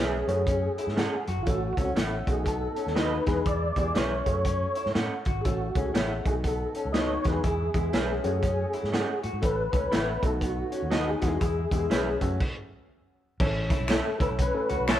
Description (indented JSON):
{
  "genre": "uptempo 1960s-style soul",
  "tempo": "121 BPM",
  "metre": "4/4",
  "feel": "swing 62% on 8ths",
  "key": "A major",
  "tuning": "A4 = 439 Hz",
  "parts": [
    { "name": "mellow tonewheel organ", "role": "melody", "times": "0.0-15.0 s", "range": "E4 to D#5", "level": "-31 LUFS", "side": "equal", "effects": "chorus vibrato, slow rotary speaker" },
    { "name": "dark upright piano", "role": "accompaniment", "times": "0.0-15.0 s", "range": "G#3 to C#5", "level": "-33 LUFS", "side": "left 1 dB", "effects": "none" },
    { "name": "electric guitar through a small old amp", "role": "riff", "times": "0.0-15.0 s", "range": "A3 to F#4", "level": "-35 LUFS", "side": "left 5 dB", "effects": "none" },
    { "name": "electric guitar through a small old amp", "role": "stabs", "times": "0.0-15.0 s", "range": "B3 to F#5", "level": "-34 LUFS", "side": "right 2 dB", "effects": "none" },
    { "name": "fingered electric bass", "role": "bass", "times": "0.0-15.0 s", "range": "G#1 to A2", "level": "-32 LUFS", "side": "equal", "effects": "none" },
    { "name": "crunchy breakbeat drum kit", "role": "drums", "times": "0.3-15.0 s", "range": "crash cymbal, hi-hat, kick drum, snare drum", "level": "-29 LUFS", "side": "equal", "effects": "none" },
    { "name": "finger snap", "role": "percussion", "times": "13.9-15.0 s", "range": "none", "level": "-35 LUFS", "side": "left 2 dB", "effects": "none" },
    { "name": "mellow horn section", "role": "second line", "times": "14.9-15.0 s", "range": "E3 to A4", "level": "-27 LUFS", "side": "left 1 dB", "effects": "none" }
  ],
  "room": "moderate stone room reverb, RT60 1.4 s",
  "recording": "band playing live in one room",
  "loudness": "-24 LUFS",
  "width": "side -12 dB against mid",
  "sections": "0.0-13.4 A section; 13.4-15.0 B section",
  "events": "stop 12.4-13.4",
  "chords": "0.2 F#m; 1.5 A; 2.2 B7; 3.2 E; 4.2 F#m; 5.5 A; 6.2 B7; 7.2 E; 8.2 F#m; 9.4 A; 10.2 B7; 11.2 E; 12.2 F#m; 13.4 A",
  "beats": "0.47 0.97 | 1.47 1.97 2.46 2.96 | 3.46 3.96 4.46 4.95 | 5.45 5.95 6.45 6.94 | 7.44 7.94 8.43 8.93 | 9.43 9.92 10.42 10.92 | 11.41 11.91 12.41 12.90 | 13.40 13.89 14.39 14.88"
}